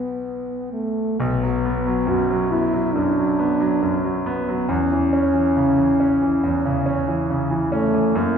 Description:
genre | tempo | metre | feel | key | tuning
classical, romantic duo for French horn and grand piano | 69 BPM | 4/4 | rubato | B minor | A4 = 440 Hz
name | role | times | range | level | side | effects
mellow French horn | melody | 0.0-8.4 s | A3 to F#4 | -20 LUFS | equal | none
bright concert grand piano | accompaniment | 0.0-8.4 s | B1 to D4 | -22 LUFS | equal | none
room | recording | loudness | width
wet scoring stage reverb, RT60 1.9 s | heard from further back in the room, faint mains hum | -18 LUFS | side -7 dB against mid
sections
0.0-1.2 A section; 1.2-8.4 B section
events
none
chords
0.0 Bm; 4.7 A/E (rootless)

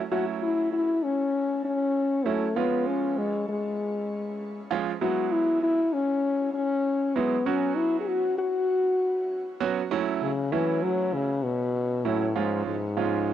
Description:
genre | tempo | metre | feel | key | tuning
pop | 98 BPM | 4/4 | straight | F# minor | A4 = 440 Hz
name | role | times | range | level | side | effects
mellow French horn | melody | 0.1-13.3 s | G#2 to G#4 | -25 LUFS | left 2 dB | cassette tape, shimmer reverb
bright concert grand piano | accompaniment | 0.1-13.3 s | E#3 to F#4 | -31 LUFS | right 9 dB | cassette tape, shimmer reverb
room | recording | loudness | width
wet small room reverb, RT60 0.5 s | home recording on cassette | -24 LUFS | side -11 dB against mid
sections
0.1-9.9 A section; 9.9-13.3 B section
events
none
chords
0.1 F#m7; 2.6 C#; 5.0 Eadd9; 7.5 Bsus2; 9.9 F#m7; 12.4 C#

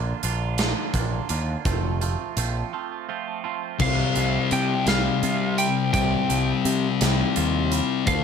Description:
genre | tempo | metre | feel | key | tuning
quiet-loud alternative rock | 56 BPM (dotted quarters) | 6/8 | straight | unclear | A4 = 440 Hz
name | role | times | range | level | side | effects
twangy electric guitar | arpeggios | 0.0-8.2 s | C3 to F4 | -31 LUFS | right 10 dB | phaser, digital delay
growling picked electric bass | bass | 0.0-8.2 s | F1 to C3 | -26 LUFS | equal | overdrive
big rock drum kit | drums | 0.2-8.2 s | crash cymbal, hi-hat, kick drum, snare drum | -27 LUFS | right 1 dB | none
lightly driven lead guitar | melody | 3.8-8.2 s | F5 to G5 | -26 LUFS | right 2 dB | digital delay
thick fuzz guitar | riff | 3.8-8.2 s | C3 to D4 | -23 LUFS | left 9 dB | distortion
room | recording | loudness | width
light reverb | none | -21 LUFS | side -7 dB against mid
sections
0.0-3.8 A section; 3.8-8.2 B section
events
break 2.7-3.8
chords
0.0 Bb; 1.7 F; 3.8 Csus4

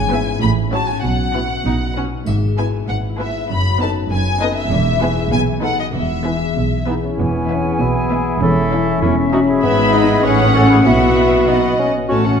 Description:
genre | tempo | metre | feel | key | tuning
cinematic, playful, whimsical film cue | 98 BPM | 2/4 | straight | E major | A4 = 440 Hz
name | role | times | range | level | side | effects
rich studio violin section | melody | 0.0-12.4 s | D#5 to B5 | -23 LUFS | left 4 dB | none
concert harp | arpeggios | 0.0-12.4 s | E2 to E5 | -23 LUFS | left 8 dB | none
clear studio cello section | bass | 0.0-12.4 s | E2 to B2 | -22 LUFS | right 3 dB | none
rich studio double bass section | bass | 0.0-12.4 s | E1 to B1 | -22 LUFS | right 4 dB | none
rich studio violin section | second line | 0.1-12.4 s | E4 to E5 | -26 LUFS | left 2 dB | none
rich studio viola section | accompaniment | 0.1-12.4 s | F#3 to E4 | -23 LUFS | right 1 dB | none
triangle | percussion | 2.3-3.5 s | none | -46 LUFS | left 4 dB | none
clear clarinet | second line | 6.9-12.2 s | D#4 to B4 | -21 LUFS | left 1 dB | none
dark cor anglais | second line | 6.9-12.2 s | B3 to G#4 | -24 LUFS | right 2 dB | none
bright silver concert flute | second line | 7.2-12.4 s | E5 to G#5 | -25 LUFS | left 1 dB | none
mellow bassoon | accompaniment | 7.2-12.4 s | B3 to E4 | -22 LUFS | right 1 dB | none
mellow French horn section | sustained chords | 7.2-12.4 s | B3 to E4 | -21 LUFS | left 5 dB | none
room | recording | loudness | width
wet recital hall reverb, RT60 1.6 s | dark, warm production | -14 LUFS | side -7 dB against mid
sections
0.0-7.2 A section; 7.2-12.4 A section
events
none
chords
0.4 F#m/A; 1.0 Bsus4; 1.7 B; 2.3 E/G#; 3.5 B7/F#; 4.7 E; 5.3 B7; 5.9 E; 8.4 A/E; 9.6 E/G#; 10.2 F#m/A; 10.9 Bsus4; 11.5 B

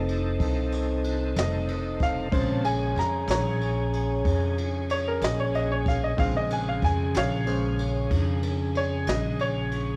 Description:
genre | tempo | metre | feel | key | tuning
slow blues | 62 BPM (dotted quarters) | 12/8 | straight | Bb minor | A4 = 440 Hz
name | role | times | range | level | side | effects
tonewheel organ | sustained chords | 0.0-10.0 s | Db3 to A5 | -32 LUFS | equal | chorus vibrato, slow rotary speaker, cassette tape
upright bass | bass | 0.0-10.0 s | F1 to F2 | -30 LUFS | equal | none
jazz brush drum kit | drums | 0.1-9.9 s | kick drum, ride cymbal, snare drum | -34 LUFS | equal | cassette tape
bright upright piano | accompaniment | 1.4-10.0 s | Db3 to Bb5 | -32 LUFS | equal | cassette tape
room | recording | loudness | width
small room reverb | home recording on cassette | -26 LUFS | mono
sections
0.0-10.0 A section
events
upright piano solo 0.0-10.0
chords
0.0 F7; 2.3 Bbm9

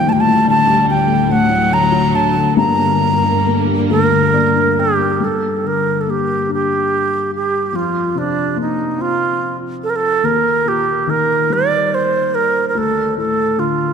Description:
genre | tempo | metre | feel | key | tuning
celtic folk, Celtic slow air | 48 BPM (dotted quarters) | 6/8 | rubato | G minor | A4 = 440 Hz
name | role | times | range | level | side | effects
bright baroque flute | melody | 0.0-13.9 s | D4 to Bb5 | -15 LUFS | right 3 dB | none
felt-muted upright piano | accompaniment | 0.0-13.9 s | D1 to G5 | -18 LUFS | left 5 dB | none
warm studio string section | sustained chords | 0.0-5.2 s | D2 to Bb3 | -22 LUFS | right 3 dB | none
room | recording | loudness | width
wet church reverb, RT60 3.7 s | none | -13 LUFS | side -6 dB against mid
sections
0.0-5.2 A section; 5.2-13.9 B section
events
felt piano fill 3.9-5.2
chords
0.1 Dsus4; 1.3 D; 2.6 Gm; 7.7 Fsus4; 10.2 Eb; 12.7 Dm

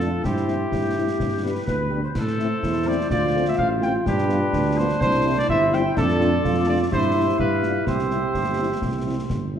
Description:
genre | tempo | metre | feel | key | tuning
military-style march for wind band | 126 BPM | 2/4 | straight | C major | A4 = 440 Hz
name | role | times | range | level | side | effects
warm cornet | melody | 0.0-9.5 s | G4 to G5 | -26 LUFS | equal | none
clear euphonium | second line | 0.0-9.5 s | D4 to G4 | -25 LUFS | equal | none
mellow woodwind section | second line | 0.0-9.5 s | D4 to F5 | -29 LUFS | left 2 dB | none
mellow French horn section | accompaniment | 0.0-9.6 s | G3 to G4 | -31 LUFS | left 5 dB | none
dark tuba | bass | 0.0-9.6 s | G1 to A2 | -25 LUFS | right 2 dB | none
concert snare drum, concert bass drum and clash cymbals | drums | 0.0-9.5 s | none | -29 LUFS | left 1 dB | none
room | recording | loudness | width
moderate scoring stage reverb, RT60 1.5 s | dark, warm production | -19 LUFS | side -8 dB against mid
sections
0.0-9.6 A section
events
none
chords
0.2 C/G; 1.2 G; 2.2 Am; 3.1 Dm7; 4.1 G7; 5.0 C; 6.0 Dm/F; 6.9 C/G; 7.4 G7; 7.9 C

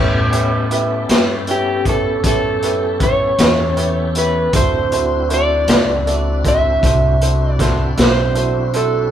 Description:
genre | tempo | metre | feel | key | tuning
slow blues | 52 BPM (dotted quarters) | 12/8 | straight | unclear | A4 = 437 Hz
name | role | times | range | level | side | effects
bright upright piano | accompaniment | 0.0-9.0 s | E4 to E5 | -23 LUFS | right 1 dB | none
tonewheel organ | sustained chords | 0.0-9.1 s | B3 to A4 | -25 LUFS | left 2 dB | slow rotary speaker, overdrive, chorus vibrato
upright bass | bass | 0.0-9.1 s | B1 to A2 | -20 LUFS | equal | none
raw garage drum kit | drums | 0.3-8.9 s | hi-hat, kick drum, snare drum | -18 LUFS | equal | none
electric slide guitar | melody | 1.5-9.1 s | G4 to E5 | -18 LUFS | right 1 dB | none
room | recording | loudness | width
light reverb | band playing live in one room | -13 LUFS | side -10 dB against mid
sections
0.0-9.1 A section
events
none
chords
0.0 A9; 4.5 D9

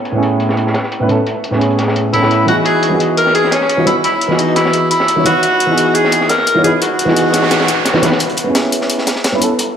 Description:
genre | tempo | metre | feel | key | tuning
liquid drum and bass | 173 BPM | 4/4 | straight | A lydian | A4 = 440 Hz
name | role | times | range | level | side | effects
dark baby grand piano | accompaniment | 0.1-9.5 s | A2 to D#5 | -14 LUFS | right 1 dB | lush chorus, low-pass filter, tape echo
crunchy breakbeat drum kit | drums | 0.1-9.7 s | hi-hat, snare drum | -21 LUFS | equal | high-pass filter on hats, low-pass filter on hats, high-pass filter on snare, low-pass filter on snare, high-pass filter on room, low-pass filter on room
electronic hi-hat | drums | 0.1-9.7 s | none | -22 LUFS | left 4 dB | high-pass filter on snare, low-pass filter on snare, high-pass filter on hats, low-pass filter on hats, high-pass filter on cymbals, low-pass filter on cymbals, high-pass filter on toms, low-pass filter on toms
warm tenor saxophone | melody | 2.1-8.0 s | C#4 to Bb4 | -15 LUFS | equal | diffuse ambient delay
noise sweep | sound effects | 7.0-8.2 s | none | -21 LUFS | right 2 dB | none
room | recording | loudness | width
wet lush hall reverb, RT60 2.3 s | dreamy mix soaked in reverb | -11 LUFS | side -8 dB against mid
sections
0.0-8.2 A section; 8.2-9.8 B section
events
noise sweep 7.0-8.2; build-up 8.2-9.8; filter sweep on grand piano 8.2-9.8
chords
0.0 Amaj9; 2.7 Emaj9; 8.2 Amaj9 (rootless)

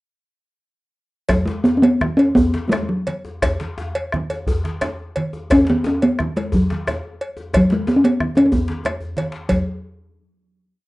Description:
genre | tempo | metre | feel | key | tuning
west african traditional, West African drum ensemble | 112-130 BPM (dotted quarters) | 12/8 | straight | unclear | A4 = 440 Hz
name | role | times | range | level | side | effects
talking drum | melody | 1.3-9.6 s | F#3 to C#4 | -16 LUFS | equal | slapback echo
bombo | percussion | 1.3-9.6 s | none | -23 LUFS | equal | none
congas | percussion | 1.3-9.6 s | none | -28 LUFS | right 2 dB | none
cowbell | percussion | 1.3-9.6 s | none | -25 LUFS | equal | none
djembe | percussion | 1.3-9.6 s | none | -28 LUFS | left 1 dB | none
room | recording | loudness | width
moderate studio reverb, RT60 0.6 s | rough home demo mix, nothing above 10.9 kHz | -17 LUFS | side -19 dB against mid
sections
1.3-9.5 A section; 9.5-10.9 final note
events
speeding up 1.3-10.9; drum fill 8.8-9.5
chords
none

